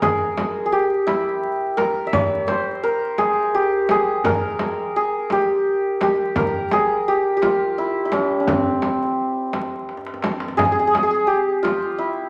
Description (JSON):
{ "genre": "Persian modal ensemble", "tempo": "57 BPM (dotted quarters)", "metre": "6/8", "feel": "straight", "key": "unclear", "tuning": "A4 = 440 Hz", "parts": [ { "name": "santur", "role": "melody", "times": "0.0-12.3 s", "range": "C4 to E5", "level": "-21 LUFS", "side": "equal", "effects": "none" }, { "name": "frame drum", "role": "percussion", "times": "0.0-11.8 s", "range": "none", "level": "-29 LUFS", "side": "equal", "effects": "none" }, { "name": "tombak", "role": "percussion", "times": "0.0-11.8 s", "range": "none", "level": "-36 LUFS", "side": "equal", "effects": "none" } ], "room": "wet large studio reverb, RT60 1.1 s", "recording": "vinyl crackle", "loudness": "-20 LUFS", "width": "mono", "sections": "0.0-10.6 A section; 10.6-12.3 B section", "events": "drum fill 9.9-10.6", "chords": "none" }